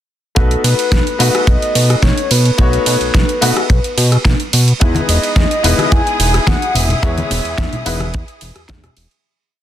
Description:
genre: nu-disco, nu disco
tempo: 108 BPM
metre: 4/4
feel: straight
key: B mixolydian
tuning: A4 = 439 Hz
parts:
  - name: soft octave-layered synth lead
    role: melody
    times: 0.4-8.4 s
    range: A4 to G#5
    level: -20 LUFS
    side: left 1 dB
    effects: chorus, cassette tape, dub echo
  - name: clear grand piano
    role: accompaniment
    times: 0.4-8.0 s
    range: G#3 to C#5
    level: -21 LUFS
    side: left 3 dB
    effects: sidechain pumping, ping-pong delay
  - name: fat analog bass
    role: bass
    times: 0.4-9.1 s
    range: E1 to B2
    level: -15 LUFS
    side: equal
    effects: none
  - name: kick drum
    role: drums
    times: 0.4-8.8 s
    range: none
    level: -14 LUFS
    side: equal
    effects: none
  - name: pop drum kit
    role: drums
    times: 0.4-9.2 s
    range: hi-hat, ride cymbal, rim click, snare drum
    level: -18 LUFS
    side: right 2 dB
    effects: overdrive
  - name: warm symphonic violin section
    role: sustained chords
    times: 4.8-9.2 s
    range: E4 to D#6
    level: -24 LUFS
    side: left 1 dB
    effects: sidechain pumping
  - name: congas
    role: percussion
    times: 4.9-8.9 s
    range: none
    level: -22 LUFS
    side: left 2 dB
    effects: none
room: light reverb, small room ambience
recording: dense, heavily limited modern master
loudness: -11 LUFS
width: side -11 dB against mid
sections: 0.4-9.2 drop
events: drop 0.4-9.2; fade-out 6.3-9.2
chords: 0.4 B7; 4.8 Emaj7

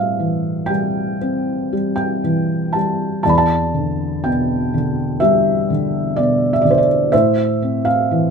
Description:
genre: classical, lyrical solo piano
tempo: 58-64 BPM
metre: 4/4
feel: rubato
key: unclear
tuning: A4 = 440 Hz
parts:
  - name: felt-muted upright piano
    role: solo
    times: 0.0-8.3 s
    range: E2 to B5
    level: -15 LUFS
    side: equal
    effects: none
room: light reverb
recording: minimal, uncompressed stereo recording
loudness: -15 LUFS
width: side -6 dB against mid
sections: 0.0-8.3 A section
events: none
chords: 0.0 Am7; 3.2 Em7; 7.1 Am

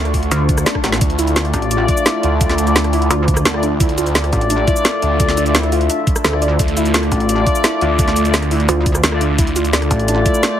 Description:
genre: dark technical drum and bass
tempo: 172 BPM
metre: 4/4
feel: straight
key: D harmonic minor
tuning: A4 = 438 Hz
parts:
  - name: deep dark ambient pad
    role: sustained chords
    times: 0.0-10.6 s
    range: A3 to C#6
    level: -22 LUFS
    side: equal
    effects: chorus, built-in reverb, sidechain pumping
  - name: phased detuned saw bass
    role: bass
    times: 0.0-9.9 s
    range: D2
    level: -18 LUFS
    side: equal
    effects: phaser, overdrive, sidechain pumping
  - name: drum and bass drum kit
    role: drums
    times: 0.1-10.5 s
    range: cabasa, hi-hat, rim click, snare drum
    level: -18 LUFS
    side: equal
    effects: overdrive
  - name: electronic kick drum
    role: drums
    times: 0.1-10.3 s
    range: none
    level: -18 LUFS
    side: equal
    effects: overdrive
  - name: pulsing pluck wobble bass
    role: bass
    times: 0.3-10.2 s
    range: A1 to D2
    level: -17 LUFS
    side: equal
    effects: chorus
  - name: swell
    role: sound effects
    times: 0.4-1.0 s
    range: none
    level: -28 LUFS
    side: left 8 dB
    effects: none
  - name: soft round pluck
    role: arpeggios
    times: 1.0-10.6 s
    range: D4 to D5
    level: -23 LUFS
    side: right 3 dB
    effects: analog chorus, sidechain pumping, dub echo
  - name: dark brass ensemble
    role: stabs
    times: 1.3-10.6 s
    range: A3 to D5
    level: -21 LUFS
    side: left 3 dB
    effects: dub echo
room: light reverb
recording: heavily compressed radio sound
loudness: -13 LUFS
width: side -10 dB against mid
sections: 0.0-10.6 A section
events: swell 0.4-1.0; drum fill 0.8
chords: 0.0 Dm

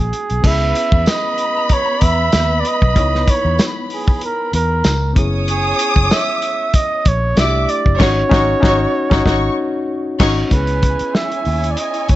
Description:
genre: lush 1970s-style soul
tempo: 95 BPM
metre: 4/4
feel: swing 54% on 16ths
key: C# dorian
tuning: A4 = 440 Hz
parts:
  - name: breathy flugelhorn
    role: melody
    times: 0.0-12.2 s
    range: G#4 to E5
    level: -19 LUFS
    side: right 3 dB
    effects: none
  - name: reed electric piano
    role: accompaniment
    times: 0.0-12.2 s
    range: A3 to C#5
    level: -22 LUFS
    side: left 3 dB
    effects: overdrive
  - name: vintage muted fingered electric bass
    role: bass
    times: 0.0-12.2 s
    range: F#1 to E2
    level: -18 LUFS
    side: equal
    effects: none
  - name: warm soul drum kit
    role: drums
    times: 0.1-12.2 s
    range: crash cymbal, hi-hat, kick drum, snare drum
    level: -16 LUFS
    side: equal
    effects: none
  - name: dark studio string section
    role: second line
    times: 0.4-12.2 s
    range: B3 to D#6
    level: -22 LUFS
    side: left 2 dB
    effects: none
  - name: tambourine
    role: percussion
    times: 1.1-7.5 s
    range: none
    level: -32 LUFS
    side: left 3 dB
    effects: none
room: light reverb, small room ambience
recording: nothing above 7.9 kHz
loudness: -13 LUFS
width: side -15 dB against mid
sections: 0.4-10.5 A section; 10.5-12.2 B section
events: band accent 8.0-10.5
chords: 0.4 C#m7; 5.2 F#9sus4; 7.4 C69; 8.0 G#7sus4; 10.5 C#m7

